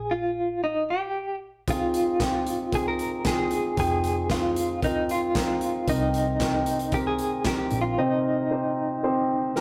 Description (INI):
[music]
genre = piano-driven pop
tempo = 114 BPM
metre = 4/4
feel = straight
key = F minor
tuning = A4 = 439 Hz
[part]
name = direct-recorded clean electric guitar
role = melody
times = 0.0-9.5 s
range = Eb4 to Bb4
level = -30 LUFS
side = equal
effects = tremolo
[part]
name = vintage muted picked electric bass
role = bass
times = 0.0-8.0 s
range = F1 to C2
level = -34 LUFS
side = equal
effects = none
[part]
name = warm grand piano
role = accompaniment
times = 1.7-9.6 s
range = C3 to G5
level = -28 LUFS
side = equal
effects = none
[part]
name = natural country drum kit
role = drums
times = 1.7-9.6 s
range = handclaps, hi-hat, kick drum, snare drum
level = -33 LUFS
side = equal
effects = none
[sound]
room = moderate stone room reverb, RT60 0.9 s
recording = rough rehearsal-room recording, faint mains hum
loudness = -26 LUFS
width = mono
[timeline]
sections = 0.0-9.6 A section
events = none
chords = 0.0 Bb5; 1.7 Fm7; 5.9 Cm7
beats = 0.10 0.62 1.15 | 1.67 2.20 2.72 3.25 | 3.77 4.30 4.83 5.35 | 5.88 6.40 6.93 7.45 | 7.98 8.50 9.03 9.55